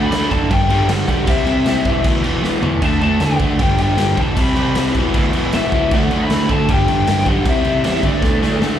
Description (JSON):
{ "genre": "punk rock", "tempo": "156 BPM", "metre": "4/4", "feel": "straight", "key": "D major", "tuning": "A4 = 439 Hz", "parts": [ { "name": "lead guitar through a small cranked amp", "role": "melody", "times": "0.0-8.6 s", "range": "D5 to B5", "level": "-22 LUFS", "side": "left 3 dB", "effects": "overdrive, slapback echo" }, { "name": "crunchy overdriven guitar", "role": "riff", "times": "0.0-8.8 s", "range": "E2 to D4", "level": "-18 LUFS", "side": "equal", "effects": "slapback echo" }, { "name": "fuzz picked electric bass", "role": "bass", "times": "0.0-8.8 s", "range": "E1 to B2", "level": "-21 LUFS", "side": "equal", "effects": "overdrive" }, { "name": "raw garage drum kit", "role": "drums", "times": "0.1-8.7 s", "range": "crash cymbal, kick drum, snare drum, toms", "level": "-19 LUFS", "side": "right 1 dB", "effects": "none" } ], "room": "little or no reverb", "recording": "live gig heard through the venue's PA, club reverb", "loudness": "-14 LUFS", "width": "side -10 dB against mid", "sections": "0.0-8.8 A section", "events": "drum fill 2.4-2.8, 8.2-8.8", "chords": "0.0 D; 0.5 G5; 1.3 C; 1.9 E5; 2.8 D; 3.6 G5; 4.4 C5; 5.0 E5; 5.9 D5; 6.7 G; 7.5 C; 8.0 D5" }